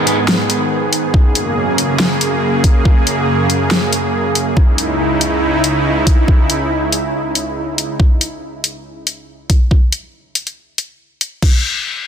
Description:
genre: heavy wobble dubstep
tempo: 140 BPM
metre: 4/4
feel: swing 53% on 16ths, half-time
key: unclear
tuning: A4 = 440 Hz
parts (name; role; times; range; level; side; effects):
- supersaw pad; sustained chords; 0.0-8.0 s; C#2 to G#4; -16 LUFS; right 1 dB; sidechain pumping
- downlifter; sound effects; 0.0-1.1 s; none; barely audible; none; none
- dubstep drum kit; drums; 0.1-11.5 s; crash cymbal, hi-hat, snare drum; -17 LUFS; left 1 dB; small room ambience
- electronic kick drum; drums; 1.1-11.5 s; none; -10 LUFS; equal; overdrive, small room ambience
room: light reverb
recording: dense, heavily limited modern master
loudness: -13 LUFS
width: side -8 dB against mid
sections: 0.0-11.4 A section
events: none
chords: 0.0 G#m; 1.1 F#add9; 4.6 C#madd9; 8.0 N.C.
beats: 0.28 0.71 | 1.14 1.57 2.00 2.42 | 2.85 3.28 3.71 4.14 | 4.57 5.00 5.42 5.85 | 6.28 6.71 7.14 7.57 | 8.00 8.42 8.85 9.28 | 9.71 10.14 10.57 11.00 | 11.42

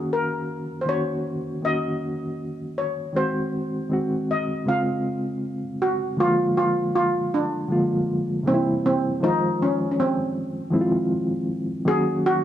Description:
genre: soul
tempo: 79 BPM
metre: 4/4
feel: straight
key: Eb dorian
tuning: A4 = 443 Hz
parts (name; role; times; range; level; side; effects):
- steel pan; melody; 0.0-12.4 s; C4 to F5; -24 LUFS; equal; none
- reed electric piano; accompaniment; 0.0-12.4 s; C3 to C5; -24 LUFS; equal; fast tremolo
room: light reverb, small room ambience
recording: none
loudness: -21 LUFS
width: side -11 dB against mid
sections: 0.0-6.2 A section; 6.2-12.4 B section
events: none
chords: 0.0 Ebm7; 3.1 Ab7; 4.7 Dbmaj7; 6.2 Bb7; 8.5 C7; 9.2 Fm7; 11.9 Ebm7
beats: | 0.11 0.87 1.63 2.39 | 3.15 3.91 4.67 5.43 | 6.19 6.95 7.70 8.46 | 9.22 9.98 10.73 11.49 | 12.25

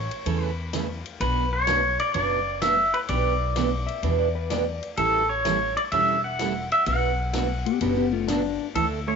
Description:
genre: country, western swing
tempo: 127 BPM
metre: 4/4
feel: swing 69% on 8ths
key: unclear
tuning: A4 = 440 Hz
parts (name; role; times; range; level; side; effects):
- pedal steel guitar; melody; 0.0-9.2 s; A4 to F#5; -24 LUFS; equal; none
- upright bass; bass; 0.0-9.2 s; E1 to E2; -29 LUFS; left 1 dB; none
- swinging big-band drum kit; drums; 0.1-8.9 s; hi-hat, ride cymbal, snare drum; -35 LUFS; left 7 dB; none
- picked steel-string acoustic guitar; accompaniment; 0.3-9.0 s; B2 to A4; -29 LUFS; right 10 dB; none
- clean lap steel guitar; second line; 3.9-8.7 s; A3 to E5; -27 LUFS; left 10 dB; none
- hollow-body jazz guitar; second line; 8.8-9.2 s; E3 to A3; -28 LUFS; right 10 dB; none
room: moderate spring reverb, RT60 2.0 s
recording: 1960s-style stereo with parts hard left and right, nothing above 7.6 kHz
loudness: -22 LUFS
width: side -6 dB against mid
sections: 0.0-9.2 A section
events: none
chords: 0.0 A; 1.2 Bm; 3.1 Em7/B; 5.0 A7; 6.9 Bm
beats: 0.26 0.73 | 1.20 1.68 2.15 2.62 | 3.09 3.56 4.03 4.51 | 4.98 5.45 5.92 6.39 | 6.87 7.34 7.81 8.28 | 8.75

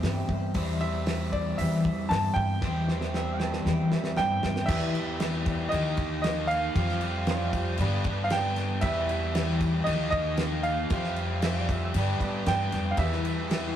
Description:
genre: folk rock and heartland rock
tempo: 116 BPM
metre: 4/4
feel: straight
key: unclear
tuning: A4 = 438 Hz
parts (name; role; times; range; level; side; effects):
- bright concert grand piano; melody; 0.0-13.8 s; D5 to A5; -31 LUFS; right 1 dB; none
- picked twelve-string acoustic guitar; accompaniment; 0.0-13.8 s; E2 to C5; -32 LUFS; left 3 dB; none
- biting overdriven guitar; riff; 0.0-13.8 s; E2 to C5; -33 LUFS; right 1 dB; none
- upright bass; bass; 0.0-13.8 s; Eb2 to A2; -31 LUFS; equal; none
- damped 70s drum kit; drums; 0.0-13.6 s; crash cymbal, hi-hat, kick drum, snare drum; -32 LUFS; equal; none
- pedal steel guitar; second line; 3.2-8.2, 11.4-12.5 s; F4 to A5; -39 LUFS; right 4 dB; none
- bright upright piano; accompaniment; 4.7-13.8 s; G4 to F5; -42 LUFS; right 3 dB; none
room: moderate stone room reverb, RT60 1.1 s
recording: rough rehearsal-room recording, tube saturation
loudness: -25 LUFS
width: side -10 dB against mid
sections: 0.0-4.7 A section; 4.7-13.8 B section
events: drum fill 2.6-4.7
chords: 0.0 C/E; 4.7 Em; 5.7 Ebadd9; 6.8 Fsus2; 7.8 G; 8.8 Em; 9.9 Ebadd9; 10.9 Fsus2; 12.0 G; 13.0 Em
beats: 0.04 | 0.56 1.08 1.59 2.11 | 2.63 3.15 3.66 4.18 | 4.70 5.22 5.73 6.25 | 6.77 7.29 7.80 8.32 | 8.84 9.36 9.88 10.40 | 10.92 11.44 11.95 12.47 | 12.99 13.51

